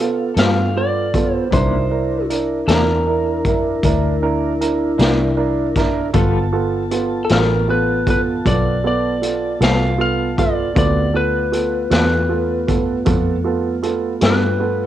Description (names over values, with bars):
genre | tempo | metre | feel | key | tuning
slow blues | 52 BPM (dotted quarters) | 12/8 | straight | G mixolydian | A4 = 440 Hz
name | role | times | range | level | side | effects
lightly driven lead guitar | melody | 0.0-14.9 s | A4 to F5 | -21 LUFS | left 1 dB | cassette tape
warm grand piano | accompaniment | 0.0-14.9 s | B3 to Bb4 | -21 LUFS | right 7 dB | cassette tape
mellow tonewheel organ | sustained chords | 0.0-14.9 s | A3 to A5 | -24 LUFS | left 1 dB | slow rotary speaker, cassette tape
vintage muted fingered electric bass | bass | 0.0-14.9 s | G1 to B2 | -21 LUFS | left 1 dB | none
clean electric guitar | accompaniment | 0.3-14.5 s | C3 to A4 | -26 LUFS | left 10 dB | tremolo, cassette tape
raw garage drum kit | drums | 0.4-14.4 s | hi-hat, kick drum, snare drum | -20 LUFS | left 1 dB | cassette tape
room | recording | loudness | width
light reverb, small room ambience | home recording on cassette | -15 LUFS | side -12 dB against mid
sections
0.0-14.9 A section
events
none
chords
0.0 G9; 1.5 C9; 6.1 G9